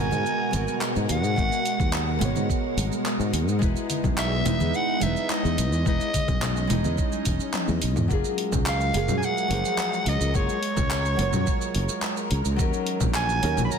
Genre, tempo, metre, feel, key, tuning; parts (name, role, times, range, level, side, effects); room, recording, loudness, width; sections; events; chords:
sunset chillout; 107 BPM; 4/4; straight; F# major; A4 = 440 Hz
raspy soprano saxophone; melody; 0.0-13.8 s; C#5 to B5; -29 LUFS; equal; ping-pong delay
nylon-string guitar; accompaniment; 0.0-13.8 s; E#3 to D#5; -30 LUFS; moving between left 8 dB and right 8 dB; auto-pan, digital delay
soft string machine; sustained chords; 0.0-13.8 s; B2 to A#4; -31 LUFS; right 1 dB; ensemble chorus
sustaining fretless electric bass; bass; 0.0-13.7 s; E1 to G#2; -26 LUFS; equal
deep house drum kit; drums; 0.1-13.8 s; congas, handclaps, hi-hat, shaker, toms; -30 LUFS; left 1 dB; soft clipping on snare
congas; percussion; 0.1-7.4 s; -36 LUFS; left 3 dB
electronic kick drum; drums; 1.4-13.1 s; -26 LUFS; equal
light reverb, digital ambience; dense, heavily limited modern master; -22 LUFS; side -6 dB against mid
0.0-8.1 A section; 8.1-13.8 A section
drum fill 7.5-8.1
0.0 G#m9; 3.6 Emaj7; 8.1 F#maj9; 12.6 D#m7